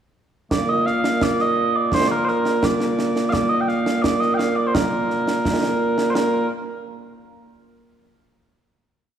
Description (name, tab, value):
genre	scottish traditional, Scottish pipe music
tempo	85 BPM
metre	2/4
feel	straight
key	Bb major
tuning	A4 = 440 Hz
part	mellow small bagpipes	melody	0.5-6.5 s	Bb2 to G5	-19 LUFS	right 1 dB	none
part	concert snare drum and concert bass drum	drums	0.5-6.3 s	none	-24 LUFS	right 2 dB	none
room	moderate concert hall reverb, RT60 2.4 s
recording	recorded in a church or concert hall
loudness	-18 LUFS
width	side -9 dB against mid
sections	0.5-6.2 A section; 6.2-7.6 final note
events	none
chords	none